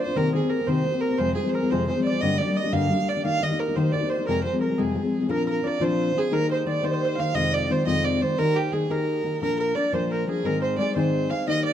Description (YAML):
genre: celtic folk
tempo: 117 BPM (dotted quarters)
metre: 6/8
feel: straight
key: F dorian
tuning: A4 = 436 Hz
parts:
  - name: warm fiddle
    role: melody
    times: 0.0-11.7 s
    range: G4 to F5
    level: -26 LUFS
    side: right 4 dB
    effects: none
  - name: concert harp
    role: second line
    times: 0.0-11.7 s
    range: G4 to F5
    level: -32 LUFS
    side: right 1 dB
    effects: none
  - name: fingerpicked steel-string acoustic guitar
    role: accompaniment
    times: 0.0-11.7 s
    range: F2 to Bb4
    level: -24 LUFS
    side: left 3 dB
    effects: none
room: wet studio reverb, RT60 0.8 s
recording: dark, warm production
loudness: -21 LUFS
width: side -10 dB against mid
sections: 0.0-5.3 A section; 5.3-11.7 B section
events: none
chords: 0.2 Cm7; 1.2 Fm; 2.2 Gm; 3.2 Eb; 4.3 Fm; 5.3 Bbadd9; 6.3 Eb; 7.4 Fm7; 8.4 Eb; 9.4 Bb; 10.4 Ab